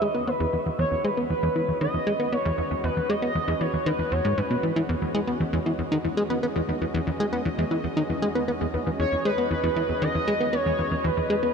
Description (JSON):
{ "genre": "ambient, sequencer-driven space music", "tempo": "117 BPM", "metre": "4/4", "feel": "straight", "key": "E major", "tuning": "A4 = 440 Hz", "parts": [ { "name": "expressive portamento lead", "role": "melody", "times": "0.0-4.8, 9.0-11.5 s", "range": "B4 to D#5", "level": "-27 LUFS", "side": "equal", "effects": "analog chorus, analog delay" }, { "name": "sweeping resonant pad", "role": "sustained chords", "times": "0.0-11.5 s", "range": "E2 to D#5", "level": "-34 LUFS", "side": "equal", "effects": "chorus" }, { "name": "plucky analog bass", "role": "riff", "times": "0.0-11.5 s", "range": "E2 to B3", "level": "-25 LUFS", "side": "equal", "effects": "analog delay" } ], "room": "wet huge ambient reverb, RT60 7.5 s", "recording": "cassette tape", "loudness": "-23 LUFS", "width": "side -6 dB against mid", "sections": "0.0-11.5 A section", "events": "fade-in on analog synth pad 0.0-11.5", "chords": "0.0 Emaj7" }